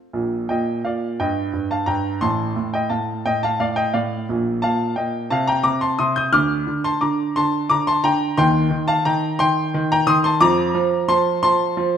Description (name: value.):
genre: classical-period piano sonatina.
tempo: 58 BPM (dotted quarters).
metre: 6/8.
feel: straight.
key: Bb major.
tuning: A4 = 442 Hz.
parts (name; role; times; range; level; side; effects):
clear baby grand piano; solo; 0.1-12.0 s; A1 to G6; -17 LUFS; equal; none.
room: moderate recital hall reverb, RT60 1.4 s.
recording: none.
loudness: -17 LUFS.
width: side -8 dB against mid.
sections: 0.1-12.0 A section.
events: none.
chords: 0.1 Bb; 1.2 Eb/G; 2.2 F7/A; 4.3 Bb5; 5.3 F7/C; 6.3 Bb/D; 8.4 Cm/Eb; 10.4 F.